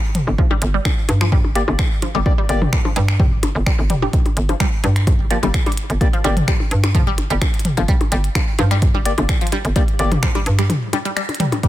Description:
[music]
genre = minimal techno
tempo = 128 BPM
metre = 4/4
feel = straight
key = G minor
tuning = A4 = 440 Hz
[part]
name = minimal click drum kit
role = drums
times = 0.1-11.7 s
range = finger snaps, hi-hat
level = -26 LUFS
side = equal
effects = none
[part]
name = electronic toms and percussion blips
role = percussion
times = 0.1-11.6 s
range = none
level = -24 LUFS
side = left 2 dB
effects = overdrive, digital delay
[part]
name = hollow knocking FM bass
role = bass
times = 0.3-10.7 s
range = F1 to G2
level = -18 LUFS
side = equal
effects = sidechain pumping
[part]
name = resonant blip pluck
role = riff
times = 0.4-11.7 s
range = F3 to G4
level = -25 LUFS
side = equal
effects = phaser, sidechain pumping, digital delay
[part]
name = electronic kick drum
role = drums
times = 0.4-11.7 s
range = none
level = -18 LUFS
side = equal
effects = none
[part]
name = percussive organ stab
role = stabs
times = 1.6-10.1 s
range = Bb3 to D5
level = -25 LUFS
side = left 3 dB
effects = analog chorus, digital delay
[sound]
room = little or no reverb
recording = none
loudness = -15 LUFS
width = side -14 dB against mid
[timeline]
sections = 0.0-11.7 A section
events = break 10.7-11.6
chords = 0.0 Gm

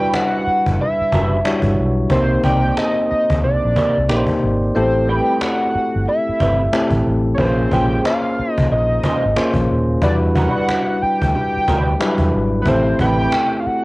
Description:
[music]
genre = R&B, neo-soul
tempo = 91 BPM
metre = 4/4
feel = swing 62% on 16ths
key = A dorian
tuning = A4 = 440 Hz
[part]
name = hollow square lead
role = melody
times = 0.0-13.8 s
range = B4 to G5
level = -20 LUFS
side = equal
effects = chorus, cassette tape
[part]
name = electric guitar through a small old amp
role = second line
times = 0.0-13.3 s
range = G3 to D5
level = -23 LUFS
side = right 3 dB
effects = ensemble chorus, cassette tape
[part]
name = bell-like tine electric piano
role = accompaniment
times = 0.0-13.8 s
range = F#3 to D5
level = -20 LUFS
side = left 1 dB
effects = slow stereo tremolo, cassette tape
[part]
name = cajon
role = drums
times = 0.1-13.7 s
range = none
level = -23 LUFS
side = equal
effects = cassette tape
[part]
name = vintage muted fingered electric bass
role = bass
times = 0.5-13.7 s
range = D#1 to E2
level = -19 LUFS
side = equal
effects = tube saturation
[sound]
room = light reverb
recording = home recording on cassette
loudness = -15 LUFS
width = side -21 dB against mid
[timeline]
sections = 0.0-13.8 A section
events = kick muted 4.7-6.1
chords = 0.0 Em9; 2.1 Cm9; 4.7 Am7; 7.4 Bbm9; 10.0 Em9; 12.7 Am9

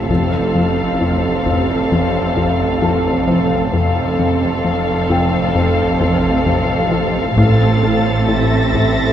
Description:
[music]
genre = cinematic, suspense film score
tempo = 66 BPM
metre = 4/4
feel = straight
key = unclear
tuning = A4 = 441 Hz
[part]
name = muted studio violin section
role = melody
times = 0.0-9.1 s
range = E5 to F5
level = -23 LUFS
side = left 5 dB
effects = none
[part]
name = muted studio violin section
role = second line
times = 0.0-9.1 s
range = A4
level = -22 LUFS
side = left 1 dB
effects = none
[part]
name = muted symphonic viola section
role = accompaniment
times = 0.0-9.1 s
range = C4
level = -22 LUFS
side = right 3 dB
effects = none
[part]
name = muted studio cello section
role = bass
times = 0.0-9.1 s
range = F2 to A2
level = -22 LUFS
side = right 2 dB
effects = none
[part]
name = muted symphonic double bass section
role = bass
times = 0.0-9.1 s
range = F1 to A1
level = -22 LUFS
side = right 3 dB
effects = none
[part]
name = swarming drone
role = drone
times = 0.0-9.1 s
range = A1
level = -24 LUFS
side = equal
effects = built-in reverb, phaser
[part]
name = felt-muted upright piano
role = texture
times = 0.0-9.1 s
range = E4 to E6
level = -29 LUFS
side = left 1 dB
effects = none
[part]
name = plucky analog bass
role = riff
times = 0.1-9.0 s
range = F2 to F3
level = -19 LUFS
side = left 2 dB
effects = none
[part]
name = solo taiko drums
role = drums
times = 0.1-1.9, 7.4-9.1 s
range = none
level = -23 LUFS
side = equal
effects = none
[part]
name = muted symphonic violin section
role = texture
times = 7.4-9.1 s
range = A6 to Bb6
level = -24 LUFS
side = equal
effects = none
[sound]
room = moderate scoring stage reverb, RT60 1.8 s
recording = none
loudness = -13 LUFS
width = side -10 dB against mid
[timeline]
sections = 0.0-9.1 A section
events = none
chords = 0.1 F; 7.4 Am

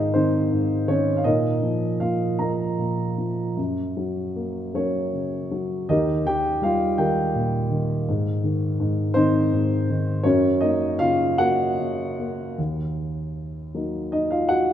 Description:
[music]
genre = classical, lyrical solo piano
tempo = 50-56 BPM (dotted quarters)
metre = 6/8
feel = rubato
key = Gb lydian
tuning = A4 = 439 Hz
[part]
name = dark grand piano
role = solo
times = 0.0-14.7 s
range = Eb2 to Bb5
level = -21 LUFS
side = equal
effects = none
[sound]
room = moderate concert hall reverb, RT60 2.2 s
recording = minimal, uncompressed stereo recording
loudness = -21 LUFS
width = side -10 dB against mid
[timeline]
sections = 0.0-12.6 A section; 12.6-14.7 B section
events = none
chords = 0.0 Ab; 1.3 Bbsus4; 3.6 Gb; 5.9 Eb; 8.1 Ab; 10.2 Gb; 12.6 Ebm

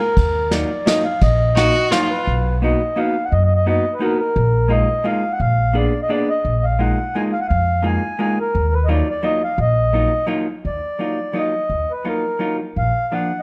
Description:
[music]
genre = musette waltz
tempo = 172 BPM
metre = 3/4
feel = straight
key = Eb harmonic minor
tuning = A4 = 440 Hz
[part]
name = mellow accordion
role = melody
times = 0.0-13.4 s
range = Bb4 to Ab5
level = -23 LUFS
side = equal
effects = none
[part]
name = upright bass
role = bass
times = 0.2-12.9 s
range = Bb1 to F#2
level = -21 LUFS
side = equal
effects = none
[part]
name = vintage brush drum kit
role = drums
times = 0.2-2.0 s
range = kick drum, ride cymbal, snare drum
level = -23 LUFS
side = equal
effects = none
[part]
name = vintage hollow-body jazz guitar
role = accompaniment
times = 0.5-13.3 s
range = F3 to Ab4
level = -26 LUFS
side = equal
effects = none
[part]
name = warm violin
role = second line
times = 1.6-2.3 s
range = F4 to Gb4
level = -22 LUFS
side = equal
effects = none
[sound]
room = light reverb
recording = dark, warm production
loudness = -19 LUFS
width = mono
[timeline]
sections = 0.0-2.3 A section; 2.3-10.6 A section; 10.6-13.4 B section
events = none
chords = 0.2 Ebmadd9; 2.3 Bmaj7; 4.4 Bb7sus4; 5.4 Bb7b9; 6.5 Bb7sus4; 8.5 Ebmadd9; 12.8 Bb

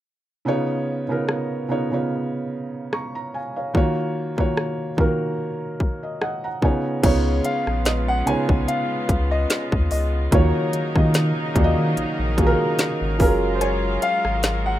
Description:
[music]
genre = contemporary R&B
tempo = 73 BPM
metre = 4/4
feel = swing 54% on 16ths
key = unclear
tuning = A4 = 440 Hz
[part]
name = felt-muted upright piano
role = accompaniment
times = 0.5-14.8 s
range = C#3 to C#6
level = -23 LUFS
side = right 1 dB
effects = none
[part]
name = trap drum kit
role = drums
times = 1.3-14.6 s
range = crash cymbal, hi-hat, kick drum, rim click, snare drum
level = -21 LUFS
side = equal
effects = none
[part]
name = warm grand piano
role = melody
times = 7.0-14.8 s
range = B#4 to G#5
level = -26 LUFS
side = left 2 dB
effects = tape echo, plate reverb
[part]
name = clear studio string section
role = sustained chords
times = 7.0-14.8 s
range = C#3 to A#4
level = -28 LUFS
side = equal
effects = none
[part]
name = warm sub bass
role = bass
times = 7.0-14.8 s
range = F#1 to D#3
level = -23 LUFS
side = equal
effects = none
[part]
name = glassy wavetable pluck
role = texture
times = 7.9-14.8 s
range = D#5 to G#5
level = -34 LUFS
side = left 1 dB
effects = chorus, tape echo
[sound]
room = light reverb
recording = rough home demo mix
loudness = -19 LUFS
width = side -13 dB against mid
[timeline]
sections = 0.5-7.0 A section; 7.0-14.8 B section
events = felt piano fill 5.8-7.0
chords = 0.5 C#7; 3.7 D#m7; 6.6 C#7; 10.3 D#m7; 13.2 F#maj9

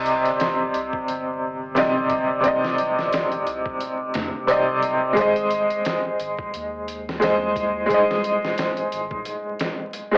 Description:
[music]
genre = trip hop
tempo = 88 BPM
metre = 4/4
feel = swing 57% on 16ths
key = C minor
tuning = A4 = 440 Hz
[part]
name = clear upright piano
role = accompaniment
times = 0.0-10.2 s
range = C3 to Eb5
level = -20 LUFS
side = equal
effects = tremolo, cassette tape, tape echo, plate reverb
[part]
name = soft dub sub bass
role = bass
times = 0.0-9.1 s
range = Eb1 to F2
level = -43 LUFS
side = equal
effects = tube saturation
[part]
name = trip hop sampler-style drum kit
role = drums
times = 0.1-10.1 s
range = hi-hat, kick drum, snare drum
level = -30 LUFS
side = equal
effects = cassette tape
[sound]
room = moderate booth ambience, RT60 0.2 s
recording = home recording on cassette, vinyl crackle, AM radio sound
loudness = -20 LUFS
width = side -33 dB against mid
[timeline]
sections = 0.0-10.2 A section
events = none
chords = 0.0 Cmadd9; 5.2 Ab

